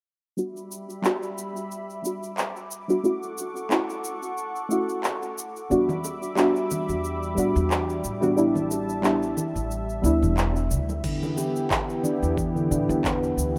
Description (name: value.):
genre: organic downtempo.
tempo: 90 BPM.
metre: 4/4.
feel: swing 55% on 16ths.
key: E dorian.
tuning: A4 = 440 Hz.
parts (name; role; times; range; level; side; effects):
deep mellow chord stab; accompaniment; 0.4-11.0 s; G3 to F#4; -28 LUFS; equal; chorus, sidechain pumping, digital delay.
warm analog pad; sustained chords; 0.4-13.6 s; E3 to D6; -34 LUFS; equal; subtle chorus, sidechain pumping.
deep house drum kit; drums; 0.4-13.5 s; crash cymbal, handclaps, shaker; -32 LUFS; equal; none.
upright bass; bass; 5.7-13.6 s; E1 to A2; -30 LUFS; equal; sidechain pumping.
congas and bongos; percussion; 5.9-13.6 s; none; -37 LUFS; equal; none.
handpan; arpeggios; 11.0-13.6 s; D3 to G4; -30 LUFS; equal; low-pass filter, digital delay.
electronic kick drum; drums; 11.0-13.2 s; none; -35 LUFS; equal; overdrive.
room: light reverb.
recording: rough home demo mix.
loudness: -26 LUFS.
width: mono.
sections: 0.4-11.0 A section; 11.0-13.6 B section.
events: filter sweep on synth stab 0.4-11.0.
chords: 0.4 Em7; 3.0 Dmaj7; 5.7 Em7; 8.4 A7sus4; 11.0 Em7.